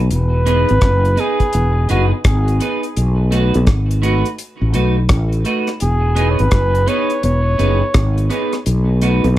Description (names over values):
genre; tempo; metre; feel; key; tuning
roots reggae; 84 BPM; 4/4; swing 64% on 16ths; E major; A4 = 440 Hz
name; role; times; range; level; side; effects
fretless electric bass; bass; 0.0-9.4 s; E1 to B1; -15 LUFS; equal; wide subtle chorus
warm flugelhorn; melody; 0.1-8.3 s; F#4 to C#5; -20 LUFS; equal; tape echo
deep reggae drum kit; drums; 0.1-9.4 s; hi-hat, kick drum, rim click; -17 LUFS; equal; none
clean electric guitar; accompaniment; 0.5-9.3 s; A3 to B4; -21 LUFS; right 2 dB; analog chorus, tape echo
room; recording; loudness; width
moderate studio ambience, RT60 0.5 s; none; -13 LUFS; side -14 dB against mid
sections
0.0-9.4 A section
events
none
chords
0.1 Emaj7; 3.0 B7; 5.8 Emaj7; 8.7 B7